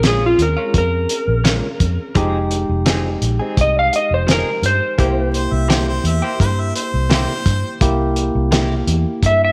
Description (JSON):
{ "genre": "straight-eighth soul blues", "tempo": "85 BPM", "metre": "4/4", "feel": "straight", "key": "F minor", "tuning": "A4 = 437 Hz", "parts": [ { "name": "electric slide guitar", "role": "melody", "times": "0.0-9.5 s", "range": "F4 to F5", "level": "-20 LUFS", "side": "equal", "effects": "none" }, { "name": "barky tine electric piano", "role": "accompaniment", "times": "0.0-9.5 s", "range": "Ab3 to Ab4", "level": "-26 LUFS", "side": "equal", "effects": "none" }, { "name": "direct-recorded clean electric guitar", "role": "stabs", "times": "0.0-8.7 s", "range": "Bb2 to Ab4", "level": "-29 LUFS", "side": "equal", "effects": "harmonic tremolo" }, { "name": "vintage muted fingered electric bass", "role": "bass", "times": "0.0-9.5 s", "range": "F1 to G2", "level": "-21 LUFS", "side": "equal", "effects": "none" }, { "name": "cloth-damped thuddy drum kit", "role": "drums", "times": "0.0-9.4 s", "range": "hi-hat, kick drum, snare drum", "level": "-21 LUFS", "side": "equal", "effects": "none" }, { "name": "bright harmonica", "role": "second line", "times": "5.3-7.8 s", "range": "C5 to E5", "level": "-27 LUFS", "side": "equal", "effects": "none" } ], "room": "light reverb, small room ambience", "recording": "none", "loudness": "-17 LUFS", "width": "mono", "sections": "0.0-9.5 A section", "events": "none", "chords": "0.0 Bbm7; 2.2 Fm7; 5.0 C7" }